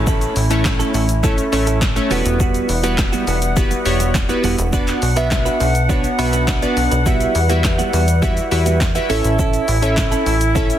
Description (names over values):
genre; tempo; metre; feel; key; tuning
dance-pop; 103 BPM; 4/4; straight; E dorian; A4 = 438 Hz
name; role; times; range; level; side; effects
glassy digital keys; accompaniment; 0.0-10.8 s; A3 to B5; -20 LUFS; equal; chorus, sidechain pumping
mellow woodwind section; sustained chords; 0.0-10.8 s; E3 to F#5; -24 LUFS; equal; sidechain pumping
clean electric guitar; riff; 0.0-10.7 s; G3 to B4; -26 LUFS; right 7 dB; lush chorus
plucky analog bass; bass; 0.0-10.7 s; E1 to E2; -19 LUFS; equal; sidechain pumping
downlifter; sound effects; 0.0-2.4 s; none; -37 LUFS; equal; none
punchy analog drum machine; drums; 0.1-10.8 s; handclaps, hi-hat, kick drum, shaker, snare drum; -20 LUFS; equal; soft clipping on snare
tube shaker; percussion; 0.1-10.8 s; none; -37 LUFS; left 11 dB; none
room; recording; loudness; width
little or no reverb; dense, heavily limited modern master; -14 LUFS; side -11 dB against mid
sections
0.0-10.8 A section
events
synth keys fill 5.9-7.1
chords
0.0 A; 2.1 Emadd9; 4.7 Bm; 7.1 Emadd9; 9.1 A